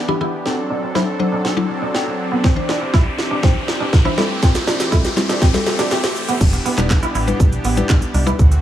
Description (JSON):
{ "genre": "dance-pop", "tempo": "121 BPM", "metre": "4/4", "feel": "straight", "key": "E minor", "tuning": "A4 = 440 Hz", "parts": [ { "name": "soft supersaw", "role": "sustained chords", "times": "0.0-8.6 s", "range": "D3 to A4", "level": "-24 LUFS", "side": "equal", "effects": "sidechain pumping" }, { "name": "riser", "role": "sound effects", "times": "0.3-6.4 s", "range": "none", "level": "-28 LUFS", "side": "equal", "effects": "none" }, { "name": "mallet-like synth pluck", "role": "accompaniment", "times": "0.1-8.4 s", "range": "E3 to C5", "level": "-22 LUFS", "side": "left 3 dB", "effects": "chorus, sidechain pumping" }, { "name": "clean electric guitar", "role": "riff", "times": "0.1-8.5 s", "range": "B3 to E4", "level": "-24 LUFS", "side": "right 2 dB", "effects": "lush chorus, low-pass filter" }, { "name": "house drum kit", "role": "drums", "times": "0.5-8.6 s", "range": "crash cymbal, handclaps, hi-hat, kick drum, shaker, snare drum", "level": "-16 LUFS", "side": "equal", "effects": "none" }, { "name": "organ-like FM bass", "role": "bass", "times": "6.4-8.6 s", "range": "E1 to D2", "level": "-18 LUFS", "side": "equal", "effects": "sidechain pumping" }, { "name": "group handclap", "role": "percussion", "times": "6.9-8.0 s", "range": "none", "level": "-36 LUFS", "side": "right 3 dB", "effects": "none" } ], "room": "light reverb", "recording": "small room ambience", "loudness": "-15 LUFS", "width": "side -11 dB against mid", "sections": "0.0-6.4 A section; 6.4-8.6 B section", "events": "build-up 0.0-6.4; drum fill 0.0-6.4; riser 0.3-6.4; drop 6.4-8.6", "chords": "0.5 D7; 2.4 Cadd9; 4.2 Em7", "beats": "| 0.46 0.95 1.45 1.95 | 2.44 2.94 3.43 3.93 | 4.42 4.92 5.42 5.91 | 6.41 6.90 7.40 7.90 | 8.39" }